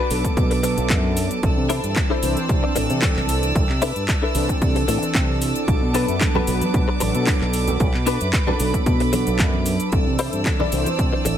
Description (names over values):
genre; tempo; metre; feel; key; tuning
nu-disco, nu disco; 113 BPM; 4/4; swing 53% on 16ths; B phrygian; A4 = 441 Hz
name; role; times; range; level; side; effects
clear studio violin section; sustained chords; 0.0-11.4 s; B4 to E6; -29 LUFS; right 2 dB; sidechain pumping
direct-recorded clean electric guitar; riff; 0.0-11.3 s; D4 to D5; -26 LUFS; left 4 dB; ensemble chorus, digital delay
mellow synth brass; accompaniment; 0.1-11.4 s; E3 to C5; -24 LUFS; right 1 dB; chorus, sidechain pumping, digital delay
fingered electric bass with an envelope filter; bass; 0.1-11.4 s; A1 to C3; -24 LUFS; equal; sidechain pumping
house drum kit; drums; 0.1-11.4 s; handclaps, hi-hat, shaker; -27 LUFS; equal; overdrive
electronic kick drum; drums; 0.2-11.1 s; none; -22 LUFS; equal; overdrive
congas; percussion; 6.3-11.0 s; none; -30 LUFS; right 2 dB; none
room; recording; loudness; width
little or no reverb; none; -18 LUFS; side -10 dB against mid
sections
0.0-11.4 A section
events
none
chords
0.0 Bm7; 1.4 C69; 5.7 Bm7; 9.9 C69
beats
0.37 0.90 | 1.43 1.96 2.49 3.02 | 3.56 4.09 4.62 5.15 | 5.68 6.21 6.74 7.27 | 7.80 8.33 8.87 9.40 | 9.93 10.46 10.99